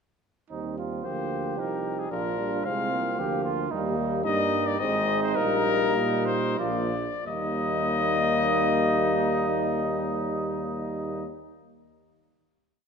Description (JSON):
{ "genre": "classical, brass quintet", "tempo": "88-114 BPM", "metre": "3/4", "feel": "straight", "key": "Eb major", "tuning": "A4 = 441 Hz", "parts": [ { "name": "dark trumpet", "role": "second line", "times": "0.5-11.2 s", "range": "Eb4 to G4", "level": "-31 LUFS", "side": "right 5 dB", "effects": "none" }, { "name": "clear French horn", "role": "accompaniment", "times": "0.5-11.2 s", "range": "G3 to Eb4", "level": "-31 LUFS", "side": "left 4 dB", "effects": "none" }, { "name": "warm trombone", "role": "accompaniment", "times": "0.5-11.2 s", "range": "F3 to Bb3", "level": "-32 LUFS", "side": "right 1 dB", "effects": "none" }, { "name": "warm tuba", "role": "bass", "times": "0.5-11.3 s", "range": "Ab1 to Bb2", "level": "-32 LUFS", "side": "right 6 dB", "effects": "none" }, { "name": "warm trumpet", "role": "melody", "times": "1.0-11.3 s", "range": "Ab4 to F5", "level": "-28 LUFS", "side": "left 7 dB", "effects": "none" } ], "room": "wet scoring stage reverb, RT60 2.0 s", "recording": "minimal, uncompressed stereo recording", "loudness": "-24 LUFS", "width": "side -6 dB against mid", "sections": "0.5-7.3 A section; 7.3-11.3 final chord", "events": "slowing down 2.9-7.3", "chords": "0.5 Eb; 2.1 Bb7; 3.7 Eb; 4.8 Ab; 5.4 Eb/Bb; 6.6 Bb; 7.3 Eb" }